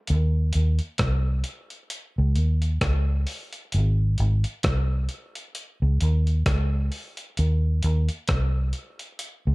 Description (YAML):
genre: roots reggae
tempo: 66 BPM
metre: 4/4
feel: swing 57% on 16ths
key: unclear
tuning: A4 = 439 Hz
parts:
  - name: vintage muted fingered electric bass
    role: bass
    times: 0.1-9.5 s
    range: Ab1 to Eb2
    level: -21 LUFS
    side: equal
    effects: none
  - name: dusty soul sampler-style drum kit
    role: drums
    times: 0.1-9.4 s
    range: hi-hat, kick drum, rim click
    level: -29 LUFS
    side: equal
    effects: vintage 12-bit sampler grit
room: little or no reverb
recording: none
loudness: -22 LUFS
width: side -24 dB against mid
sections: 0.1-9.5 A section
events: none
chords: none